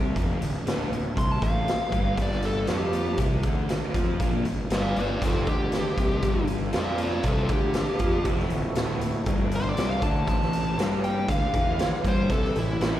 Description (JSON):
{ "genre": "blues rock power trio and southern rock", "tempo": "118 BPM", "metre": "4/4", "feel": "straight", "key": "unclear", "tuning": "A4 = 440 Hz", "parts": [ { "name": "thick fuzz guitar", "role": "riff", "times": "0.0-13.0 s", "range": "D2 to G4", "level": "-30 LUFS", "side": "left 1 dB", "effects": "distortion, slapback echo" }, { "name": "fuzz fingered electric bass", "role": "bass", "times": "0.0-13.0 s", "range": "D1 to G2", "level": "-29 LUFS", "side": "equal", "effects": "overdrive" }, { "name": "raw garage drum kit", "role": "drums", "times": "0.2-12.9 s", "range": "hi-hat, kick drum, snare drum", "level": "-27 LUFS", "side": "equal", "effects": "none" }, { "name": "dark smooth lead guitar", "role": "melody", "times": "1.2-13.0 s", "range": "E4 to C6", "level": "-29 LUFS", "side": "left 1 dB", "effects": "overdrive, slapback echo, digital delay" }, { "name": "percussive tonewheel organ", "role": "sustained chords", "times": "6.2-13.0 s", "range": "E3 to C5", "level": "-36 LUFS", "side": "right 4 dB", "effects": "overdrive, chorus vibrato, wide subtle chorus" } ], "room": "light reverb", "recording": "live gig heard through the venue's PA, recital hall reverb", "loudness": "-23 LUFS", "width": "side -13 dB against mid", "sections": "0.0-13.0 A section", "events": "none", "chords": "0.0 D5; 2.2 G7; 8.3 D7; 10.3 A7" }